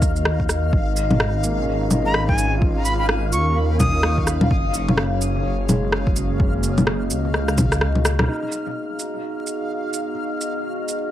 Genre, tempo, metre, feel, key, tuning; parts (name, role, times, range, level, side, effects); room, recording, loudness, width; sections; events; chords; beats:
future garage; 127 BPM; 4/4; swing 60% on 16ths; G# dorian; A4 = 440 Hz
felt-muted upright piano; accompaniment; 0.0-11.1 s; G#3 to E#4; -31 LUFS; right 2 dB; vintage 12-bit sampler grit, sidechain pumping, tape echo
warbly tape-like pad; sustained chords; 0.0-11.1 s; A#3 to D#5; -27 LUFS; left 1 dB; chorus, built-in reverb, sidechain pumping
swelling detuned saw bass; bass; 0.0-8.3 s; F#1 to D#2; -22 LUFS; equal; sidechain pumping
electronic kick drum; drums; 0.0-7.7 s; -22 LUFS; equal; overdrive
electronic shaker, rim click, cabasa and bongos; drums; 0.0-11.0 s; -21 LUFS; equal; overdrive, analog delay
backwards swelling texture; texture; 0.0-11.1 s; E#5; -31 LUFS; left 2 dB; built-in reverb
breathy bright jazz flute; melody; 2.1-4.2 s; G#5 to D#6; -26 LUFS; equal; tape echo
light reverb; echo-heavy mix, vinyl crackle; -18 LUFS; side -12 dB against mid
0.0-8.3 A section; 8.3-11.1 B section
drum fill 7.3-8.3; kick drops out 7.8-8.3; band accent 8.2
0.0 G#m7 (rootless); 0.7 C#add9/G#; 4.5 F#add9; 8.3 G#m7
0.26 | 0.73 1.20 1.67 2.15 | 2.62 3.09 3.56 4.04 | 4.51 4.98 5.45 5.92 | 6.40 6.87 7.34 7.82 | 8.29 8.76 9.23 9.71 | 10.18 10.65